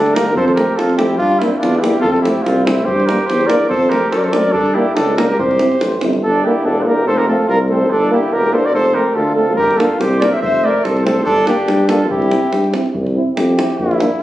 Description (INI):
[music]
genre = balkan folk, Balkan brass band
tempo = 143 BPM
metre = 2/4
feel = swing 54% on 16ths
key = C mixolydian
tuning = A4 = 440 Hz
[part]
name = warm flugelhorn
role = melody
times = 0.0-14.2 s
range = E4 to E5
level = -17 LUFS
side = equal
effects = none
[part]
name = warm trumpet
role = second line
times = 0.0-12.7 s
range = C4 to C5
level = -22 LUFS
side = left 1 dB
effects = none
[part]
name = clear tuba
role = bass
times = 0.0-14.0 s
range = E1 to G2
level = -17 LUFS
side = equal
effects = none
[part]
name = warm euphonium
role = accompaniment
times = 0.1-14.1 s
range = G3 to C4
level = -20 LUFS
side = right 2 dB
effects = none
[part]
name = davul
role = percussion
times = 0.1-6.2, 9.6-14.1 s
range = none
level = -23 LUFS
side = right 2 dB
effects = none
[part]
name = clear trombone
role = accompaniment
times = 0.2-14.1 s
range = Bb3 to E4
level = -23 LUFS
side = left 1 dB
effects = none
[sound]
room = moderate studio reverb, RT60 0.6 s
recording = recorded on a phone in the room, club reverb, compression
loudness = -12 LUFS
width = side -14 dB against mid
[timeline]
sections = 0.0-6.2 A section; 6.2-12.9 A section; 12.9-14.2 B section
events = flugelhorn solo 12.9-14.2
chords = 0.4 F; 1.2 Gm; 2.0 F; 2.9 Gm; 3.7 F; 4.5 Gm; 5.4 C; 6.2 Gm; 7.1 F; 7.9 Gm; 8.7 F; 9.6 Gm; 10.4 F; 11.3 Gm; 12.1 C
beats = | 0.36 0.78 | 1.20 1.62 | 2.04 2.45 | 2.87 3.29 | 3.71 4.13 | 4.55 4.96 | 5.38 5.80 | 6.22 6.64 | 7.06 7.48 | 7.90 8.32 | 8.73 9.15 | 9.57 9.99 | 10.41 10.84 | 11.26 11.68 | 12.10 12.52 | 12.94 13.37 | 13.79 14.21